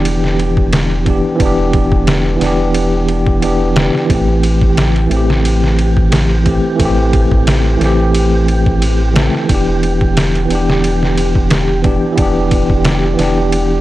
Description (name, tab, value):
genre	trip hop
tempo	89 BPM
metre	4/4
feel	swing 54% on 16ths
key	E minor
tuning	A4 = 440 Hz
part	tine electric piano	accompaniment	0.0-13.8 s	E3 to A4	-15 LUFS	equal	medium stereo tremolo, harmonic tremolo, tape echo
part	warm sub bass	bass	0.0-13.8 s	E1 to A1	-16 LUFS	equal	none
part	wind-like tuned noise texture	texture	0.0-13.8 s	G4	-24 LUFS	right 4 dB	built-in reverb
part	trip hop sampler-style drum kit	drums	0.1-13.7 s	kick drum, ride cymbal, snare drum	-16 LUFS	equal	none
room	digital ambience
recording	dry, gritty hardware recording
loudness	-11 LUFS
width	side -16 dB against mid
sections	0.0-13.8 A section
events	none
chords	0.0 Em7; 4.1 Am7; 9.5 Em7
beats	0.05 0.73 | 1.40 2.07 2.75 3.42 | 4.10 4.77 5.45 6.12 | 6.79 7.47 8.14 8.82 | 9.49 10.16 10.84 11.51 | 12.19 12.86 13.54